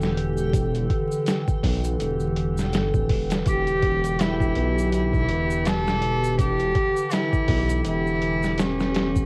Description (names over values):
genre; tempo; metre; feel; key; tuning
trip hop; 82 BPM; 4/4; swing 58% on 16ths; E minor; A4 = 435 Hz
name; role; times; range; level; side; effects
warbly tape-like pad; sustained chords; 0.0-9.3 s; D3 to A4; -30 LUFS; equal; chorus, built-in reverb, cassette tape
dark detuned saw bass; bass; 0.0-9.3 s; D1 to B1; -28 LUFS; equal; none
boom bap sampler-style drum kit; drums; 0.0-9.3 s; hi-hat, kick drum, snare drum; -27 LUFS; equal; overdrive, small room ambience, cassette tape
egg shaker; percussion; 0.0-9.3 s; none; -48 LUFS; equal; none
backwards swelling texture; texture; 0.0-9.3 s; G4; -39 LUFS; equal; built-in reverb, cassette tape
rich cello; melody; 3.5-9.3 s; C#4 to A4; -27 LUFS; equal; vintage 12-bit sampler grit, cassette tape, dub echo
room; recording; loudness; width
light reverb; home recording on cassette, vinyl crackle; -23 LUFS; mono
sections
0.0-9.3 A section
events
none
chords
0.0 Em7